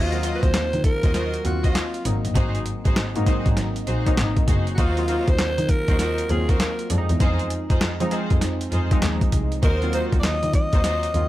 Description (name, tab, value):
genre	R&B, new jack swing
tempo	99 BPM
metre	4/4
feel	swing 64% on 16ths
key	Eb dorian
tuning	A4 = 440 Hz
part	growling alto saxophone	melody	0.0-11.3 s	F4 to Eb5	-26 LUFS	equal	none
part	warm studio string section	stabs	0.0-11.0 s	Eb4 to Eb5	-31 LUFS	right 1 dB	none
part	dark double bass	bass	0.0-11.3 s	Gb1 to F3	-24 LUFS	equal	none
part	warm analog keys	accompaniment	0.1-11.3 s	F3 to F4	-28 LUFS	left 1 dB	chorus
part	boom bap sampler-style drum kit	drums	0.1-11.3 s	handclaps, hi-hat, kick drum, snare drum	-22 LUFS	equal	overdrive
room	little or no reverb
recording	none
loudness	-19 LUFS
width	side -15 dB against mid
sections	0.0-11.3 A section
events	none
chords	0.0 Ebm69; 2.1 Ab7; 4.8 Ebm69; 6.9 Fm7; 9.6 Ebm69